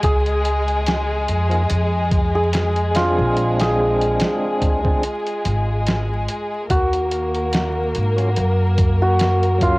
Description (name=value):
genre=trip hop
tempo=72 BPM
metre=4/4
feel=swing 56% on 16ths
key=Eb dorian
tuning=A4 = 440 Hz
part: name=santur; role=melody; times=0.0-9.8 s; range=F4 to Ab4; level=-22 LUFS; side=equal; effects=cassette tape, tape echo
part: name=dark studio violin section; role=sustained chords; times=0.0-9.8 s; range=Ab3 to Bb4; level=-24 LUFS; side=left 1 dB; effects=none
part: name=upright bass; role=bass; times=0.0-9.8 s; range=Ab1 to Ab2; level=-20 LUFS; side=equal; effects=none
part: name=dusty soul sampler-style drum kit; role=drums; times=0.0-9.8 s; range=hi-hat, kick drum, snare drum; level=-22 LUFS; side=equal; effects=cassette tape
part: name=percussive tonewheel organ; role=accompaniment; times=1.5-9.8 s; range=F3 to F5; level=-25 LUFS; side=equal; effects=overdrive, stopped rotary speaker, tremolo
room=light reverb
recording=home recording on cassette, vinyl crackle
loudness=-16 LUFS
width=side -22 dB against mid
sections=0.0-9.8 A section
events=filter sweep on tonewheel organ 0.0-9.8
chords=0.0 Db6; 3.4 Bb9; 6.7 Ebm9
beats=| 0.03 0.87 1.70 2.53 | 3.37 4.20 5.03 5.87 | 6.70 7.53 8.37 9.20